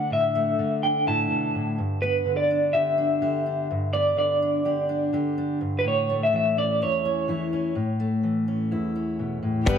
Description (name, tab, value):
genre	indie folk with a building arrangement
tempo	125 BPM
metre	4/4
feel	straight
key	unclear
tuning	A4 = 440 Hz
part	electric guitar through a small old amp	melody	0.0-9.8 s	B3 to A5	-24 LUFS	equal	tremolo
part	fingerpicked steel-string acoustic guitar	accompaniment	0.0-9.7 s	E2 to G4	-26 LUFS	left 1 dB	none
part	picked old ladder-braced acoustic guitar	accompaniment	9.7-9.8 s	G3 to B4	-24 LUFS	left 7 dB	none
part	rich chamber string section	sustained chords	9.7-9.8 s	D3 to G4	-33 LUFS	left 2 dB	none
part	upright bass	bass	9.7-9.8 s	G2	-26 LUFS	equal	none
part	kick drum	drums	9.7-9.8 s	none	-22 LUFS	equal	none
part	egg shaker	percussion	9.7-9.8 s	none	-46 LUFS	right 6 dB	none
room	moderate echo chamber reverb, RT60 2.2 s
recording	none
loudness	-22 LUFS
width	side -7 dB against mid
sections	0.0-9.7 A section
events	none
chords	0.0 Dsus2/A; 1.8 G; 5.8 A